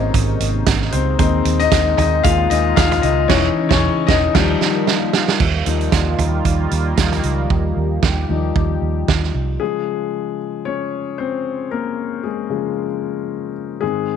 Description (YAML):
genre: piano-driven pop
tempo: 114 BPM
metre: 4/4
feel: swing 56% on 16ths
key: unclear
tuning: A4 = 440 Hz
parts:
  - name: warm concert grand piano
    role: accompaniment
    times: 0.0-14.2 s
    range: Ab2 to F5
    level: -20 LUFS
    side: left 10 dB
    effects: none
  - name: sweeping resonant pad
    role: sustained chords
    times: 0.0-9.6 s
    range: Bb2 to G4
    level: -26 LUFS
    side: right 3 dB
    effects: chorus
  - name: vintage muted fingered electric bass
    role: bass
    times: 0.0-9.6 s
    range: Fb1 to Eb2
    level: -19 LUFS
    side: right 2 dB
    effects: none
  - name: loose indie drum kit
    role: drums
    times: 0.1-9.3 s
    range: crash cymbal, hi-hat, kick drum, snare drum, toms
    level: -18 LUFS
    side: right 6 dB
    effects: none
room: small room ambience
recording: 1960s-style stereo with parts hard left and right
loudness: -16 LUFS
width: side -8 dB against mid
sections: 0.0-5.4 A section; 5.4-9.6 B section; 9.6-14.2 C section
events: grand piano solo 0.0-5.4, 5.4-9.6, 9.6-14.2; band accent 3.3-5.4; drum fill 4.3-5.4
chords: 0.0 Abadd9; 1.2 Ebsus4; 3.3 Dbmadd9/Fb; 4.3 Ebadd9; 9.6 Db